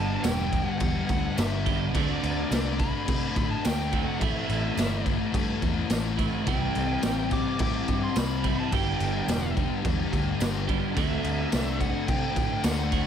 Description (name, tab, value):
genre	rock, shoegaze and dream pop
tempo	106 BPM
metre	4/4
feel	straight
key	unclear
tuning	A4 = 440 Hz
part	dark smooth lead guitar	melody	0.0-13.1 s	D5 to D6	-35 LUFS	right 2 dB	overdrive, slapback echo
part	crunchy overdriven guitar	riff	0.0-13.1 s	G2 to G4	-34 LUFS	right 13 dB	reverse reverb
part	thick fuzz guitar	riff	0.0-13.1 s	G2 to D4	-31 LUFS	left 9 dB	distortion, analog chorus
part	vintage muted picked electric bass	bass	0.0-13.0 s	E1 to C3	-31 LUFS	right 1 dB	none
part	raw garage drum kit	drums	0.2-13.1 s	crash cymbal, kick drum, snare drum	-28 LUFS	equal	none
part	tambourine	percussion	0.2-12.8 s	none	-42 LUFS	right 12 dB	none
part	electric guitar through a small old amp	arpeggios	6.5-13.1 s	E3 to G4	-40 LUFS	right 3 dB	analog chorus, slapback echo
room	light reverb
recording	none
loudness	-24 LUFS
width	side -8 dB against mid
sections	0.0-13.1 A section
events	none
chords	0.0 G6; 1.9 D5; 4.2 Am7; 6.5 C; 8.7 G6; 11.0 D7sus4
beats	0.25 0.82 1.38 | 1.95 2.52 3.08 3.65 | 4.21 4.78 5.34 5.91 | 6.47 7.03 7.60 8.16 | 8.72 9.28 9.84 10.40 | 10.96 11.53 12.09 12.64